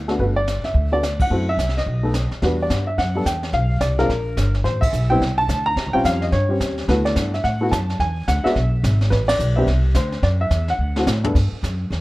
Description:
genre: jazz piano trio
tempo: 215 BPM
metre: 4/4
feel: swing 62% on 8ths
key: E minor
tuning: A4 = 436 Hz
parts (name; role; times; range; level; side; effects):
- upright bass; bass; 0.0-12.0 s; F#1 to A2; -20 LUFS; equal; none
- warm upright piano; melody; 0.1-11.3 s; G2 to A#5; -21 LUFS; equal; plate reverb
- vintage brush drum kit; drums; 0.1-12.0 s; brushed snare drum, crash cymbal, hi-hat, kick drum, ride cymbal, snare drum, toms; -26 LUFS; equal; none
room: light reverb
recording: rough home demo mix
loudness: -17 LUFS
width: side -19 dB against mid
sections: 0.0-2.4 A section; 2.4-11.4 B section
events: band accent 1.2, 4.8, 9.3; drum fill 10.8-11.4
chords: 0.2 Gmaj9; 1.3 F#m7b5; 1.9 B7; 2.4 Em9; 3.5 Bdim; 4.1 Gm; 4.7 Am7; 5.8 D#13; 6.9 D69; 8.0 E7; 9.1 Amadd9; 10.2 Dadd9 (rootless); 10.8 D; 11.4 Gmaj7(no3)

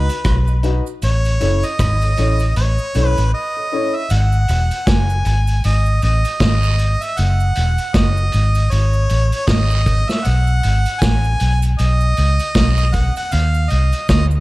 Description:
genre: roots reggae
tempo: 78 BPM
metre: 4/4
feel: swing 59% on 16ths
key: unclear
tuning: A4 = 438 Hz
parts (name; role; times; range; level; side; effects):
- clear harmonica; melody; 0.0-14.3 s; B4 to G#5; -22 LUFS; right 1 dB; tape echo, plate reverb
- dark upright piano; stabs; 0.0-3.9 s; C#4 to D#5; -23 LUFS; left 2 dB; none
- vintage muted fingered electric bass; bass; 0.0-14.4 s; E1 to D#2; -15 LUFS; equal; none
- vintage drum kit; drums; 0.1-14.3 s; hi-hat, kick drum, rim click, snare drum; -20 LUFS; equal; none
- cabasa and guiro; percussion; 0.1-14.4 s; none; -34 LUFS; right 6 dB; none
room: light reverb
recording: dark, warm production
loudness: -14 LUFS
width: side -19 dB against mid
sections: 0.0-4.1 A section; 4.1-14.4 B section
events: break 3.3-4.1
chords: 0.0 B; 1.0 A; 4.1 Emaj9 (rootless); 10.2 B; 13.3 N.C.

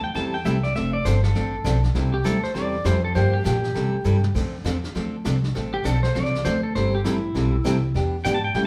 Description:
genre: country, western swing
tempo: 200 BPM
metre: 4/4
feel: swing 61% on 8ths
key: C major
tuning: A4 = 441 Hz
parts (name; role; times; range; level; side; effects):
- pedal steel guitar; second line; 0.0-8.6 s; E4 to A5; -29 LUFS; equal; none
- upright bass; bass; 0.0-8.7 s; F1 to C3; -25 LUFS; equal; none
- picked steel-string acoustic guitar; accompaniment; 0.1-8.7 s; C3 to A4; -29 LUFS; equal; none
- vintage brush drum kit; drums; 0.2-8.7 s; brushed snare drum, crash cymbal, hi-hat, kick drum, snare drum, toms; -35 LUFS; equal; none
room: wet studio reverb, RT60 0.7 s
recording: band playing live in one room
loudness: -23 LUFS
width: mono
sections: 0.0-8.7 A section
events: pedal steel guitar solo 0.0-8.7; drum fill 4.1-4.4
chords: 0.0 C6; 0.8 F6; 2.0 C6; 3.2 Gm7; 3.8 C6; 4.4 F6; 6.8 C6; 7.9 Em7

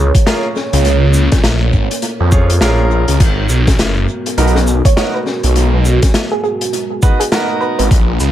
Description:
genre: glitch hop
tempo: 102 BPM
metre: 4/4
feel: swing 60% on 16ths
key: G# dorian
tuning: A4 = 440 Hz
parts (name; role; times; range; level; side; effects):
- dark analog pad; sustained chords; 0.0-8.3 s; G#3 to C#5; -23 LUFS; right 3 dB; chorus, phaser, sidechain pumping
- phased detuned saw bass; bass; 0.0-8.3 s; F#1 to E#2; -12 LUFS; equal; phaser, tube saturation
- electronic kick drum; drums; 0.1-8.1 s; none; -11 LUFS; equal; overdrive
- raw garage drum kit; drums; 0.1-8.3 s; crash cymbal, hi-hat, shaker, snare drum; -19 LUFS; left 2 dB; tape echo
- bright baby grand piano; stabs; 0.3-7.9 s; B3 to C#5; -20 LUFS; right 2 dB; sidechain pumping, tape echo
- woody wave-folded pluck; melody; 4.9-7.9 s; G#4 to C#5; -21 LUFS; right 3 dB; lush chorus, tape echo
room: light reverb, small room ambience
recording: echo-heavy mix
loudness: -11 LUFS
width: side -12 dB against mid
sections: 0.0-8.3 A section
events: none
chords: 0.0 A#m7; 3.2 G#m9

